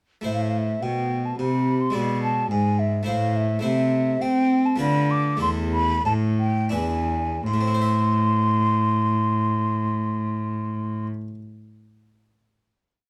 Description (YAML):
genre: classical, baroque-style sonata movement with continuo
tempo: 81-107 BPM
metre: 3/4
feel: straight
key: A minor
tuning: A4 = 435 Hz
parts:
  - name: harpsichord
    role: accompaniment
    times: 0.2-11.4 s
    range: E2 to E5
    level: -32 LUFS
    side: equal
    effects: none
  - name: mellow hollow concert flute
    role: melody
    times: 0.3-11.1 s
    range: E5 to D6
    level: -28 LUFS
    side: equal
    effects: none
  - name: rich cello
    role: bass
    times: 0.3-11.1 s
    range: E2 to C4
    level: -25 LUFS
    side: equal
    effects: none
room: moderate small room ambience, RT60 0.5 s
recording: dark, warm production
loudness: -23 LUFS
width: mono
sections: 0.3-7.5 A section; 7.5-11.9 final chord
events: slowing down 2.8-7.5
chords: 0.3 Am; 1.9 E7/B; 3.1 Am; 3.6 Am/C; 4.8 Bm7b5/D; 5.4 A5/E; 6.7 E7; 7.5 Am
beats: | 0.26 0.82 1.39 | 1.95 2.51 3.08 | 3.64 4.22 4.80 | 5.42 6.05 6.74 | 7.46 8.21 8.95 | 9.69 10.43 11.16